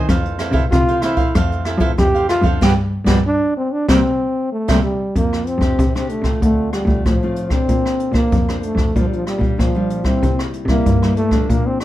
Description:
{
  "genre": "samba and choro",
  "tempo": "95 BPM",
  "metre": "4/4",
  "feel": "straight",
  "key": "C major, F major from 5.2 s",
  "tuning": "A4 = 441 Hz",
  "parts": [
    { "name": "cavaquinho", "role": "accompaniment", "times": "0.0-4.8 s", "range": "E4 to F5", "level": "-24 LUFS", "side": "right 5 dB", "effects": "none" },
    { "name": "nylon-string guitar", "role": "accompaniment", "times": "0.0-11.8 s", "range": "F2 to C5", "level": "-23 LUFS", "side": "left 1 dB", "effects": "none" },
    { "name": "warm cello", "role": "bass", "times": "0.0-11.8 s", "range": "D2 to F3", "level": "-20 LUFS", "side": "equal", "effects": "none" },
    { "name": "jazz brush drum kit", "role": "drums", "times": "0.1-11.8 s", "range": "hi-hat, kick drum, rim click, snare drum", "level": "-19 LUFS", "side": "equal", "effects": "none" },
    { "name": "breathy trombone", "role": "melody", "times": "0.7-11.8 s", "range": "F3 to G4", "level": "-19 LUFS", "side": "equal", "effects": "none" }
  ],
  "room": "light reverb",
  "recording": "dark, warm production",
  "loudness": "-15 LUFS",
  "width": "side -14 dB against mid",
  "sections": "0.0-5.2 A section; 5.2-11.8 B section",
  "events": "band accent 2.6-5.2; drum fill 4.8-5.2",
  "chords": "0.1 Fmaj7; 2.6 G7; 3.9 C7; 5.2 F69; 6.4 Dm7; 7.7 Bbmaj9; 9.0 Gm7/Bb; 10.2 C7"
}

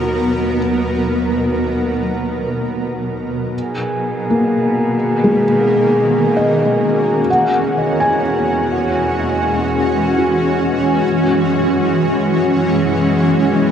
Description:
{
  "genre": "ambient",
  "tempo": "free time",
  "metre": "none",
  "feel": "none",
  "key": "unclear",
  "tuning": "A4 = 437 Hz",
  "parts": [
    { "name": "shimmering ambient pad", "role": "sustained chords", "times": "0.0-13.7 s", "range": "B2 to A#4", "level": "-16 LUFS", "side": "equal", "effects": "chorus, built-in reverb" },
    { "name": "felt-muted upright piano", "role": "arpeggios", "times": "0.0-13.7 s", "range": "G#3 to G#5", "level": "-19 LUFS", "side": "left 1 dB", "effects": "dub echo" },
    { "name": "bright studio cello section", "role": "bass", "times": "0.0-13.7 s", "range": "D#2 to B2", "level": "-24 LUFS", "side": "equal", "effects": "none" },
    { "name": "glass harmonica", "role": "texture", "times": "3.5-13.7 s", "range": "G#4 to G#5", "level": "-23 LUFS", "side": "right 1 dB", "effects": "shimmer reverb" }
  ],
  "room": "wet spring reverb, RT60 2.4 s",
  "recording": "echo-heavy mix, cassette tape",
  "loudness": "-14 LUFS",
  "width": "side -8 dB against mid",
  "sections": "0.0-3.5 A section; 3.5-13.7 B section",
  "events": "fade-out on felt piano 3.5-13.7; fade-out on cello section 3.5-13.7; fade-out on glass harmonica 3.5-13.7",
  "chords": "0.0 Bmaj7/D#; 3.5 Bmaj9; 7.3 E69; 11.0 F#9sus4"
}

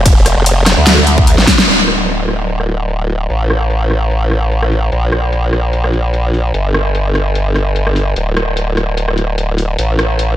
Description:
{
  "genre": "heavy wobble dubstep",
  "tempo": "148 BPM",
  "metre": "4/4",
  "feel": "swing 54% on 16ths, half-time",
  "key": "D minor",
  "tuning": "A4 = 440 Hz",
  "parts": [
    { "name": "formant-sweep wobble bass", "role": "bass", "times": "0.0-10.4 s", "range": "D1 to D2", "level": "-13 LUFS", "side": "equal", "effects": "chorus, overdrive" },
    { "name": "dubstep drum kit", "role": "drums", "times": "0.1-10.3 s", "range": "crash cymbal, hi-hat, ride cymbal, rim click, snare drum", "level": "-16 LUFS", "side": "equal", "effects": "low-pass filter on snare, small room ambience, low-pass filter on hats, low-pass filter on cymbals" },
    { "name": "electronic kick drum", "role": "drums", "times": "0.1-1.6 s", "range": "none", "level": "-10 LUFS", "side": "equal", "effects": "small room ambience" }
  ],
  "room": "moderate lush hall reverb, RT60 2.3 s",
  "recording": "dreamy mix soaked in reverb",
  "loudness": "-11 LUFS",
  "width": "side -12 dB against mid",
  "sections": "0.0-1.7 A section; 1.7-10.4 B section",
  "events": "drop 0.0-1.7; drum fill 1.4-1.7; band accent 1.6",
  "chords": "none"
}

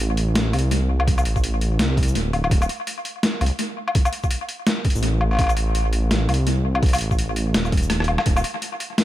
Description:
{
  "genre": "half-time drum and bass",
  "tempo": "167 BPM",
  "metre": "4/4",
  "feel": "swing 59% on 16ths, half-time",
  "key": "unclear",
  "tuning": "A4 = 440 Hz",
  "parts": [
    { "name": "dark detuned saw bass", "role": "bass", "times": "0.0-8.4 s", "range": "D1 to C2", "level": "-21 LUFS", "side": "equal", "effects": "none" },
    { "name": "boom bap sampler-style drum kit", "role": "drums", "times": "0.2-9.0 s", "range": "hi-hat, rim click, shaker, snare drum, woodblock", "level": "-23 LUFS", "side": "left 1 dB", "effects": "overdrive, analog delay" },
    { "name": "electronic kick drum", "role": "drums", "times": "1.1-8.3 s", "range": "none", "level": "-19 LUFS", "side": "equal", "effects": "overdrive" }
  ],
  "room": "light reverb, digital ambience",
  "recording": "echo-heavy mix",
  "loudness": "-19 LUFS",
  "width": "side -14 dB against mid",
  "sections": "0.0-9.0 A section",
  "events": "drum fill 7.9-8.3",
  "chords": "none"
}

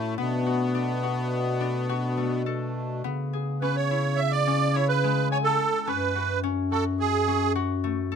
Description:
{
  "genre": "contemporary instrumental, chamber music in an uneven meter",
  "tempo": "106 BPM",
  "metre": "5/4",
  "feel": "straight",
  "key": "unclear",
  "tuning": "A4 = 443 Hz",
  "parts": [
    { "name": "musette accordion", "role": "melody", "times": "0.0-7.5 s", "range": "A3 to E5", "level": "-26 LUFS", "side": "right 4 dB", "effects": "none" },
    { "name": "pedal harmonium", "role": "sustained chords", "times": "0.0-3.0 s", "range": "A2 to E4", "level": "-33 LUFS", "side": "right 2 dB", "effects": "none" },
    { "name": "concert harp", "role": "arpeggios", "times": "0.0-8.2 s", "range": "G#3 to G#5", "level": "-30 LUFS", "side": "left 9 dB", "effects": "none" },
    { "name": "dark bass clarinet", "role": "bass", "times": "0.0-8.2 s", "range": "F#2 to C#3", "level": "-28 LUFS", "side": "equal", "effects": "none" }
  ],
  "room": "light reverb",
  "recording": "close, detailed microphones",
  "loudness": "-23 LUFS",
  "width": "side -7 dB against mid",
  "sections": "0.0-3.0 A section; 3.0-8.2 B section",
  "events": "none",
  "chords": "0.2 Bm7; 3.0 C#m7; 5.9 F#m"
}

